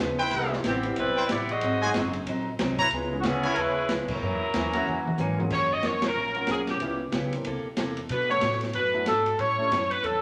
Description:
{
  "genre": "jazz, big band swing",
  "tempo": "185 BPM",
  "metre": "4/4",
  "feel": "swing 61% on 8ths",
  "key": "unclear",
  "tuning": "A4 = 442 Hz",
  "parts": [
    { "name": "picked acoustic archtop guitar", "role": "accompaniment", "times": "0.0-10.2 s", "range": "F#2 to A4", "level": "-35 LUFS", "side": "equal", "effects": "none" },
    { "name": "upright bass", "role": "bass", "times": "0.0-10.2 s", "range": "F#1 to B2", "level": "-38 LUFS", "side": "equal", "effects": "none" },
    { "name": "clear trumpet section", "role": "stabs", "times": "0.2-5.2 s", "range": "E4 to A#5", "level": "-30 LUFS", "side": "equal", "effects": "none" },
    { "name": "open jazz drum kit", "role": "drums", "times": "0.2-10.1 s", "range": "crash cymbal, hi-hat, kick drum, ride cymbal, snare drum, toms", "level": "-35 LUFS", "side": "equal", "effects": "none" },
    { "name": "warm grand piano", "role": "accompaniment", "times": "0.3-9.7 s", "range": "E3 to B#4", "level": "-38 LUFS", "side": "equal", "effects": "none" },
    { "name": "bright saxophone section", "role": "melody", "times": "0.7-10.2 s", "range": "E3 to D#5", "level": "-28 LUFS", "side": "equal", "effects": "none" }
  ],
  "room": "wet large studio reverb, RT60 1.2 s",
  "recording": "none",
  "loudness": "-27 LUFS",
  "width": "mono",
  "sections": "0.0-5.5 A section; 5.5-10.2 B section",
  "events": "band accent 4.1, 6.0; drum fill 4.9-5.5",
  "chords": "0.3 Cmaj7; 1.6 G#7; 2.9 C#m7; 4.2 F#7; 5.5 F#maj7; 6.8 C#m7b5; 7.5 C6; 8.1 Bm7; 9.4 A7",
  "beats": "| 0.32 0.64 0.97 1.29 | 1.62 1.94 2.27 2.59 | 2.92 3.24 3.57 3.89 | 4.21 4.54 4.86 5.19 | 5.51 5.84 6.16 6.48 | 6.81 7.13 7.45 7.78 | 8.10 8.42 8.74 9.07 | 9.39 9.71 10.03"
}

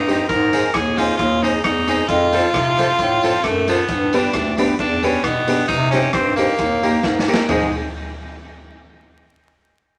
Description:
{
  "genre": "ska",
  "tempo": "133 BPM",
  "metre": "4/4",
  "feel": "swing 54% on 8ths",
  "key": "Ab major",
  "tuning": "A4 = 440 Hz",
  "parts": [
    { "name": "raspy tenor saxophone", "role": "melody", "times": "0.0-7.7 s", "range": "Ab3 to Bb4", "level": "-22 LUFS", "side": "equal", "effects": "none" },
    { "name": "mellow bass clarinet", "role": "bass", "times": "0.0-7.7 s", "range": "D2 to C3", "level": "-24 LUFS", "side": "equal", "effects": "none" },
    { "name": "clean electric guitar", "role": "accompaniment", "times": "0.1-7.6 s", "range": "Bb3 to A4", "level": "-26 LUFS", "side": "equal", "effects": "dub echo" },
    { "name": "honky-tonk upright piano", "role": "stabs", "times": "0.1-7.7 s", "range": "Bb3 to C5", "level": "-26 LUFS", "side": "equal", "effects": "none" },
    { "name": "raw garage drum kit", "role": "drums", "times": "0.1-7.6 s", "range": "hi-hat, kick drum, rim click, snare drum, toms", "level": "-27 LUFS", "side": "equal", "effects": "dub echo" },
    { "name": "tambourine", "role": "percussion", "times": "0.1-7.7 s", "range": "none", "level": "-40 LUFS", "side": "equal", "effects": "none" }
  ],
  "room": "moderate studio reverb, RT60 0.6 s",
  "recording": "vinyl crackle",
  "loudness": "-18 LUFS",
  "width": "mono",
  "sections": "0.0-7.5 A section; 7.5-9.3 B section",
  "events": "drum fill 7.0-7.5",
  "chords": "0.3 Ab; 2.1 F; 3.9 G; 5.7 Cm; 6.6 Eb; 7.5 Ab",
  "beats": "| 0.29 0.74 1.19 1.64 | 2.09 2.54 2.99 3.44 | 3.89 4.34 4.79 5.24 | 5.69 6.14 6.59 7.04 | 7.49"
}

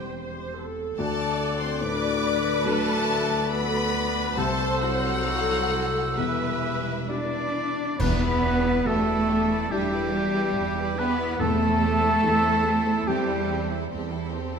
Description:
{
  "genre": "cinematic, emotional film score for orchestra",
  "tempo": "71 BPM",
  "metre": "4/4",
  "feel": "rubato",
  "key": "E minor",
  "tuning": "A4 = 440 Hz",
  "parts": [
    { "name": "rich studio violin section", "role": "melody", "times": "0.0-14.6 s", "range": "A4 to D6", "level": "-32 LUFS", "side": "left 3 dB", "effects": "none" },
    { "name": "clear oboe", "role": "second line", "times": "0.0-13.9 s", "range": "G4 to D5", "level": "-33 LUFS", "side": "right 4 dB", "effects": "none" },
    { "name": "concert flute", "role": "second line", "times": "0.0-13.9 s", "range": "G5 to G6", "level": "-31 LUFS", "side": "left 1 dB", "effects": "none" },
    { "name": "dark clarinet", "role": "second line", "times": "0.0-13.9 s", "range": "G4 to D5", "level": "-34 LUFS", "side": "left 2 dB", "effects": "none" },
    { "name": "rich studio violin section", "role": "second line", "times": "0.0-14.6 s", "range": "E4 to D5", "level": "-36 LUFS", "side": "left 3 dB", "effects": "none" },
    { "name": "felt-muted upright piano", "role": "accompaniment", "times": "0.0-14.6 s", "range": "C2 to C5", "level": "-33 LUFS", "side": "left 3 dB", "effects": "none" },
    { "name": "rich studio viola section", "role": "accompaniment", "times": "0.0-14.6 s", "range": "C4 to D5", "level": "-33 LUFS", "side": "right 2 dB", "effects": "none" },
    { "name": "clear French horn section", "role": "sustained chords", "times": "0.0-13.9 s", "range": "E3 to D4", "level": "-32 LUFS", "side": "left 4 dB", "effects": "none" },
    { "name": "concert harp", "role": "arpeggios", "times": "0.0-14.6 s", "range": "C3 to D6", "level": "-34 LUFS", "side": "left 7 dB", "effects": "none" },
    { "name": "rich studio cello section", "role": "bass", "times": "0.0-13.9 s", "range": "C2 to D4", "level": "-29 LUFS", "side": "right 2 dB", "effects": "none" },
    { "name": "rich studio double bass section", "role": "bass", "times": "0.0-14.6 s", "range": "E1 to E2", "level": "-33 LUFS", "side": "right 5 dB", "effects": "none" },
    { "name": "clash cymbals and concert bass drum", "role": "percussion", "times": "8.0-9.7 s", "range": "none", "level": "-33 LUFS", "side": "right 1 dB", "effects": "none" },
    { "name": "timpani", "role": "percussion", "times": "8.0-12.6 s", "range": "E2", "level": "-33 LUFS", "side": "left 1 dB", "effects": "none" }
  ],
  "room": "moderate scoring stage reverb, RT60 1.8 s",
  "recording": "none",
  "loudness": "-22 LUFS",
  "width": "side -6 dB against mid",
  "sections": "0.0-8.0 A section; 8.0-14.6 B section",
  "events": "band accent 8.0-8.9",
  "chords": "0.0 C6/E; 1.0 D; 4.4 Am/C; 6.2 Em; 8.0 Em7; 11.4 C6/E",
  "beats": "0.15 | 0.98 1.82 2.66 3.51 | 4.38 5.26 6.17 7.10 | 8.00 8.86 9.71 10.56 | 11.40 12.24 13.07 13.90"
}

